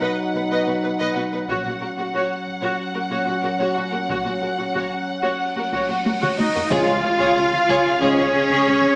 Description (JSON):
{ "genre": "cinematic, epic orchestral film score", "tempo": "92 BPM", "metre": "4/4", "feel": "straight", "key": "Db mixolydian", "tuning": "A4 = 440 Hz", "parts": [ { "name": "warm symphonic violin section", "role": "melody", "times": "0.0-9.0 s", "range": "Db5 to Gb5", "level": "-26 LUFS", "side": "equal", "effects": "none" }, { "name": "rich symphonic violin section", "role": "second line", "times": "0.0-8.7 s", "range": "Gb4 to Eb5", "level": "-26 LUFS", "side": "equal", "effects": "none" }, { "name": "rich symphonic viola section", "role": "accompaniment", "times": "0.0-9.0 s", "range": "Gb4 to Cb5", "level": "-26 LUFS", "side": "equal", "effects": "none" }, { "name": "mellow French horn section", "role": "sustained chords", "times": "0.0-8.2 s", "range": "Gb3 to F4", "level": "-27 LUFS", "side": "equal", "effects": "none" }, { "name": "rich symphonic cello section", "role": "bass", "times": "0.0-9.0 s", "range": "Bb2 to F4", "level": "-23 LUFS", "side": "equal", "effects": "none" }, { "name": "warm symphonic double bass section", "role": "bass", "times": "1.5-8.7 s", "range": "Bb1 to Db2", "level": "-33 LUFS", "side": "equal", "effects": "none" }, { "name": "taiko ensemble", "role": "drums", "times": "1.5-9.0 s", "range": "none", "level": "-28 LUFS", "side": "equal", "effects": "none" }, { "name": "cymbal swell and impact", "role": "sound effects", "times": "5.5-9.0 s", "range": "none", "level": "-35 LUFS", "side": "equal", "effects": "none" }, { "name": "warm trumpet section", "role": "stabs", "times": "6.4-9.0 s", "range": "Db5 to F5", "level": "-24 LUFS", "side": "equal", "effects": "none" }, { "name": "clear trombone section", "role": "sustained chords", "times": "6.7-8.2 s", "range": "Ab2 to Ab3", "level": "-30 LUFS", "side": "equal", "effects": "none" }, { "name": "timpani", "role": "percussion", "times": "6.7-7.6 s", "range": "Db3", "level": "-31 LUFS", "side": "equal", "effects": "none" } ], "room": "moderate scoring stage reverb, RT60 1.5 s", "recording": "small speaker sound", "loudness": "-18 LUFS", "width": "side -35 dB against mid", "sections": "0.0-6.7 A section; 6.7-9.0 B section", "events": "cymbal swell 5.5-6.7; drum fill 6.1-6.7; impact 6.7-9.0", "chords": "0.0 Cb; 1.5 Gb/Bb; 6.7 Db", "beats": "0.18 0.83 | 1.49 2.14 2.79 3.44 | 4.10 4.75 5.40 6.05 | 6.71 7.36 8.01 8.66" }